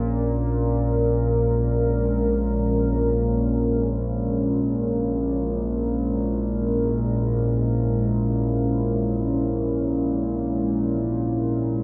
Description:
dark ambient drone; free time; A4 = 441 Hz
deep dark ambient pad; sustained chords; 0.0-11.8 s; Ab3 to Bb4; -26 LUFS; equal; chorus, built-in reverb
analog drone; drone; 0.0-11.8 s; Bb1 to Bb2; -26 LUFS; equal; chorus
wet spring reverb, RT60 2.5 s; cassette tape, nothing above 7.6 kHz; -23 LUFS; mono
0.0-11.8 A section
0.0 Dbm

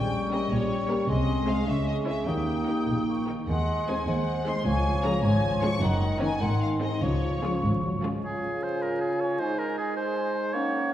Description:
classical, dramatic, fast romantic movement for symphony orchestra; 97-105 BPM (dotted quarters); 6/8; rubato; Db major from 3.5 s; A4 = 443 Hz
rich symphonic violin section; melody; 0.0-7.6 s; Db5 to Db6; -35 LUFS; left 2 dB
mellow clarinet; second line; 0.0-10.9 s; Db4 to Eb5; -33 LUFS; left 1 dB
mellow silver concert flute; second line; 0.0-10.9 s; Gb5 to Eb6; -36 LUFS; equal
warm bassoon; accompaniment; 0.0-10.9 s; Db3 to Bb3; -34 LUFS; right 1 dB
dark French horn section; sustained chords; 0.0-8.2 s; Eb3 to Eb4; -32 LUFS; left 1 dB
clear symphonic double bass section; bass; 0.0-8.1 s; Gb1 to Eb2; -31 LUFS; equal
rich studio cello section; bass; 0.0-8.1 s; Db2 to Db3; -31 LUFS; right 1 dB
warm symphonic violin section; second line; 0.3-8.2 s; Eb4 to Eb5; -39 LUFS; left 3 dB
clear symphonic viola section; accompaniment; 0.3-8.2 s; Eb3 to F4; -36 LUFS; right 1 dB
timpani; percussion; 4.7-7.6 s; Db3; -36 LUFS; left 1 dB
warm oboe; second line; 8.2-10.9 s; Ab4 to Db5; -30 LUFS; right 1 dB
wet concert hall reverb, RT60 2.2 s; heard from further back in the room, vinyl crackle; -24 LUFS; side -11 dB against mid
0.0-8.2 A section; 8.2-10.9 B section
0.0 Gdim/Bb; 1.1 Ab/C; 1.7 Dbm; 2.3 Eb; 3.5 Ab7/Eb; 4.7 Db; 5.8 Gb6; 6.4 Ab; 7.0 Db; 9.4 Ab

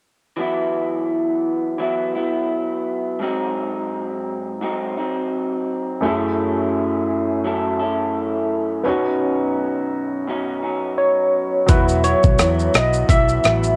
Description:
indie pop, bedroom pop; 85 BPM; 4/4; swing 55% on 16ths; E major; A4 = 442 Hz
electric guitar through a small old amp; accompaniment; 0.4-13.8 s; G#2 to A4; -24 LUFS; equal; subtle chorus, vibrato effect, cassette tape
warm upright piano; accompaniment; 6.0-13.8 s; F#2 to G#4; -26 LUFS; equal; cassette tape
barky tine electric piano; melody; 11.0-13.8 s; B4 to E5; -20 LUFS; equal; overdrive, analog chorus, cassette tape
vintage muted fingered electric bass; bass; 11.7-13.8 s; E1 to E2; -23 LUFS; equal
boom bap sampler-style drum kit; drums; 11.7-13.8 s; hi-hat, kick drum, rim click, shaker; -19 LUFS; equal; overdrive, cassette tape
moderate studio reverb, RT60 0.5 s; home recording on cassette; -20 LUFS; mono
0.4-11.7 A section; 11.7-13.8 B section
0.4 Esus2; 3.2 G#7; 6.0 F#m7; 8.9 Badd9; 11.7 Esus2

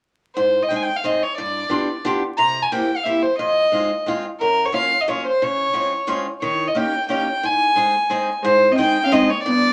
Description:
musette waltz; 178 BPM; 3/4; straight; Ab major; A4 = 441 Hz
rich violin; melody; 0.4-9.7 s; Bb4 to Bb5; -21 LUFS; equal
picked old ladder-braced acoustic guitar; accompaniment; 0.4-9.7 s; F2 to Ab4; -26 LUFS; equal
vintage hollow-body jazz guitar; second line; 8.4-9.7 s; Ab3 to Eb4; -22 LUFS; equal
wet small room reverb, RT60 0.6 s; vinyl crackle; -20 LUFS; mono
0.4-8.4 A section; 8.4-9.7 A section
0.4 Ab; 1.4 G7; 2.4 C7; 3.4 Fm7; 4.4 Gbmaj7; 5.4 Dbmaj7; 6.4 Eb7; 7.4 Ab

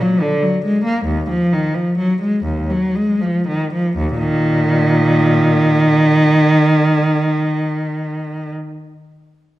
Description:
classical, baroque-style suite movement for unaccompanied cello; 37-50 BPM (dotted quarters); 6/8; rubato; Eb minor; A4 = 440 Hz
clear cello; solo; 0.0-8.5 s; Eb2 to Bb3; -14 LUFS; equal
wet recital hall reverb, RT60 1.5 s; dark, warm production; -13 LUFS; side -15 dB against mid
0.0-4.0 A section; 4.0-9.6 B section
slowing down 0.0-4.0
0.0 Bb7; 1.0 Ebm; 4.0 Eb5

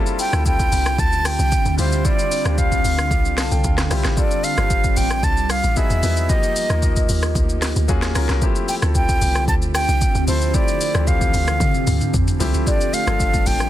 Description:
amapiano; 113 BPM; 4/4; straight; A4 = 442 Hz
warm concert grand piano; accompaniment; 0.0-13.7 s; E3 to A5; -26 LUFS; left 4 dB
ethereal airy pad; sustained chords; 0.0-13.7 s; D3 to A4; -28 LUFS; right 1 dB; ensemble chorus, built-in reverb, sidechain pumping
afro-pop drum kit; drums; 0.1-13.7 s; hi-hat, kick drum, rim click, shaker, snare drum, toms; -21 LUFS; equal; soft clipping on snare
breathy concert flute; melody; 0.2-13.7 s; C5 to A5; -23 LUFS; right 1 dB; tape echo
deep log drum bass; bass; 0.3-13.7 s; G1 to D3; -20 LUFS; equal
congas; percussion; 12.9-13.6 s; -31 LUFS; right 3 dB
digital ambience; dense, heavily limited modern master; -16 LUFS; side -13 dB against mid
0.0-13.7 A section
grand piano fill 3.1-4.2; drum fill 11.6-12.7
0.0 Dm11; 4.2 G9sus4; 5.8 Emaj7; 6.3 Ebmaj7; 7.9 Ebm11; 8.4 Dm11; 12.7 G9sus4

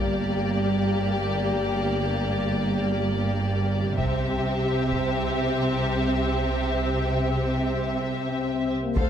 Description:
cinematic, epic orchestral film score; free time; A4 = 439 Hz
warm symphonic violin section; melody; 0.0-9.1 s; D5 to F5; -32 LUFS; left 5 dB
warm studio violin section; second line; 0.0-9.1 s; G4 to C5; -30 LUFS; left 3 dB
rich symphonic viola section; accompaniment; 0.0-9.1 s; Bb3 to A4; -31 LUFS; right 1 dB
warm symphonic cello section; bass; 0.0-9.0 s; G2 to D3; -29 LUFS; right 2 dB
warm symphonic double bass section; bass; 0.0-9.0 s; G1 to D2; -28 LUFS; right 2 dB
taiko ensemble; drums; 4.0-5.2, 9.0-9.1 s; -29 LUFS; left 1 dB
dark French horn section; sustained chords; 8.3-9.1 s; A3 to C4; -27 LUFS; left 5 dB
moderate concert hall reverb, RT60 1.9 s; -22 LUFS; side -9 dB against mid
0.0-9.0 A section
build-up 0.0-9.0
0.0 Gm; 4.0 C

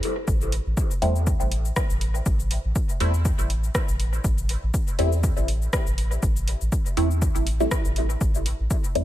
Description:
dub techno; 121 BPM; 4/4; swing 55% on 16ths; A minor; A4 = 440 Hz
deep house drum kit; drums; 0.0-9.0 s; cabasa, hi-hat, rim click; -32 LUFS; left 1 dB; overdrive, dub echo
soft dub sub bass; bass; 0.3-9.0 s; A1 to E2; -24 LUFS; equal; sidechain pumping
electronic kick drum; drums; 0.3-8.8 s; -25 LUFS; equal; overdrive
filtered dub chord stab; stabs; 1.0-9.0 s; G3 to E4; -29 LUFS; equal; phaser, dub echo
little or no reverb; -21 LUFS; side -13 dB against mid
0.0-9.0 A section
0.0 A5

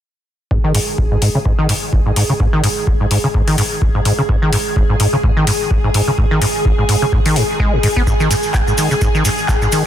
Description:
acid house; 127 BPM; 4/4; swing 56% on 16ths; A4 = 441 Hz
string machine, full ensemble; sustained chords; 0.5-9.9 s; G#4; -21 LUFS; equal; ensemble chorus, sidechain pumping
acid bass, saw; riff; 0.5-9.8 s; G#1 to B3; -16 LUFS; equal; overdrive, lush chorus, sidechain pumping, dub echo
electronic kick drum; drums; 0.5-9.6 s; -17 LUFS; equal
booming analog drum machine; drums; 0.7-9.8 s; handclaps, hi-hat; -22 LUFS; left 2 dB
cabasa; percussion; 8.1-9.8 s; -25 LUFS; right 3 dB
light reverb, digital ambience; dense, heavily limited modern master; -13 LUFS; side -10 dB against mid
0.5-9.9 A section
filter sweep on acid bass 0.5-9.9

